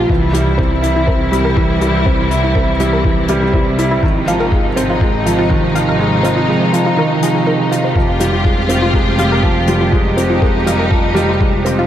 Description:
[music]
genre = piano and strings electronica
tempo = 122 BPM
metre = 4/4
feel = straight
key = unclear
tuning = A4 = 440 Hz
[part]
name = rich symphonic string section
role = sustained chords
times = 0.0-11.9 s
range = C3 to G4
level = -18 LUFS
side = equal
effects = sidechain pumping
[part]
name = wide unison pluck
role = arpeggios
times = 0.0-11.8 s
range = E4 to F5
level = -22 LUFS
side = left 1 dB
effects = sidechain pumping, tape echo
[part]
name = felt-muted upright piano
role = riff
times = 0.0-11.9 s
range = Eb3 to F4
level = -16 LUFS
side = right 2 dB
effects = tape echo
[part]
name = bright studio double bass section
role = bass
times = 0.0-11.9 s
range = F1 to C2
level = -19 LUFS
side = equal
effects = sidechain pumping
[part]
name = electronic kick drum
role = drums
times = 0.1-11.5 s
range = none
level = -16 LUFS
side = equal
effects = none
[part]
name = hi-hat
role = drums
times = 0.3-11.8 s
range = none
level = -28 LUFS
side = left 7 dB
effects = none
[sound]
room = moderate lush hall reverb, RT60 2.5 s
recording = dreamy mix soaked in reverb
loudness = -12 LUFS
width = side -11 dB against mid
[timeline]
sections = 0.0-11.9 A section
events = filter sweep on synth arpeggio sound 0.0-11.9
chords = 0.1 C; 4.0 Ab6; 8.0 Fmadd9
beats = | 0.10 0.59 1.08 1.57 | 2.06 2.56 3.05 3.54 | 4.03 4.52 5.01 5.51 | 6.00 6.49 6.98 7.47 | 7.97 8.46 8.95 9.44 | 9.93 10.43 10.92 11.41

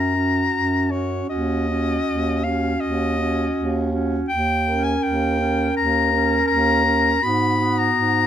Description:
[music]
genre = classical, lyrical piece for single-reed quartet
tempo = 81 BPM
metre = 4/4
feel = rubato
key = unclear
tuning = A4 = 440 Hz
[part]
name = clear soprano saxophone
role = melody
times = 0.0-8.3 s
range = C#5 to B5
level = -21 LUFS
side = left 3 dB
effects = none
[part]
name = mellow alto saxophone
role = second line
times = 0.0-8.3 s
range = F#4 to A#4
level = -28 LUFS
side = right 9 dB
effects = none
[part]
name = warm clarinet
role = accompaniment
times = 0.0-8.3 s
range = B3 to C#4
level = -25 LUFS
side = equal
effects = none
[part]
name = clear bass clarinet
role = bass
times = 0.0-8.3 s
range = D#2 to G#2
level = -24 LUFS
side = right 1 dB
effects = none
[sound]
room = light reverb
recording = minimal, uncompressed stereo recording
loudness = -18 LUFS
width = side -10 dB against mid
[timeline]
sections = 0.0-8.3 A section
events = none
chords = 0.0 F#; 1.3 D#m7; 7.2 G#m7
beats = 0.55 | 1.30 2.08 2.82 3.56 | 4.29 5.04 5.77 6.49 | 7.24 7.98

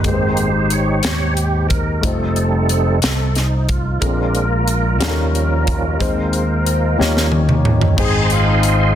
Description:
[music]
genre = slow gospel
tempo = 60 BPM (dotted quarters)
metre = 6/8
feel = straight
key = Ab major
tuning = A4 = 439 Hz
[part]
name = dark upright piano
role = accompaniment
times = 0.0-8.9 s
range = Ab2 to Db5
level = -22 LUFS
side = left 5 dB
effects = none
[part]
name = tonewheel organ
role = sustained chords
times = 0.0-8.9 s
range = Eb3 to C6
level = -21 LUFS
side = right 3 dB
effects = fast rotary speaker, chorus vibrato
[part]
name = fingered electric bass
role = bass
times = 0.0-8.9 s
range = F1 to Eb2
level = -18 LUFS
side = equal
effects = none
[part]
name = crisp fusion drum kit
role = drums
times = 0.0-8.8 s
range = crash cymbal, hi-hat, kick drum, snare drum, toms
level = -20 LUFS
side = equal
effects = none
[part]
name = dark horn section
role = melody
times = 8.0-8.9 s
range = Ab3 to Ab4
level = -19 LUFS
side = left 1 dB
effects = slapback echo
[sound]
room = light reverb, small room ambience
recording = dense, heavily limited modern master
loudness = -14 LUFS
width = side -10 dB against mid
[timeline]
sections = 0.0-8.0 A section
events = tonewheel organ solo 0.0-8.0; drum fill 7.0-8.0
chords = 0.0 Abmaj7; 2.0 F7; 4.0 Bb7; 5.0 Eb7; 6.0 Ab/Eb; 7.0 Eb7; 8.0 Ab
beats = | 0.04 1.04 | 2.03 3.03 | 4.02 5.01 | 6.00 6.99 | 7.98

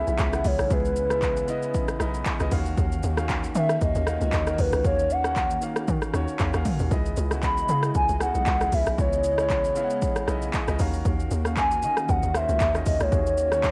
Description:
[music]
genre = amapiano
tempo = 116 BPM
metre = 4/4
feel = swing 55% on 16ths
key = C# dorian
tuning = A4 = 441 Hz
[part]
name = hollow clarinet-like synth lead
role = melody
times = 0.0-13.7 s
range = B4 to B5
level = -28 LUFS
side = equal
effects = chorus, cassette tape, tape echo
[part]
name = clear concert grand piano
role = accompaniment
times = 0.0-13.7 s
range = C#3 to A#5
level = -35 LUFS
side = equal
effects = none
[part]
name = hollow soft pad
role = sustained chords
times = 0.0-13.7 s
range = C#3 to D#5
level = -38 LUFS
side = equal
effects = ensemble chorus, sidechain pumping
[part]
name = hollow log drum bass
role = bass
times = 0.0-13.7 s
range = B1 to D#3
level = -30 LUFS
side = equal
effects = none
[part]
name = deep house drum kit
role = drums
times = 0.1-13.7 s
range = handclaps, hi-hat, kick drum, rim click, shaker, toms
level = -30 LUFS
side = equal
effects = overdrive, cassette tape
[sound]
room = digital ambience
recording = home recording on cassette, vinyl crackle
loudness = -24 LUFS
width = mono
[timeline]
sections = 0.0-13.7 A section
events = grand piano fill 1.7-2.8, 6.1-6.9, 10.0-11.1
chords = 0.0 C#m9; 2.5 D#m9; 6.9 C#m9; 10.8 D#m9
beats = 0.19 | 0.71 1.22 1.74 2.26 | 2.78 3.29 3.81 4.33 | 4.84 5.36 5.88 6.40 | 6.91 7.43 7.95 8.47 | 8.98 9.50 10.02 10.54 | 11.05 11.57 12.09 12.60 | 13.12 13.64

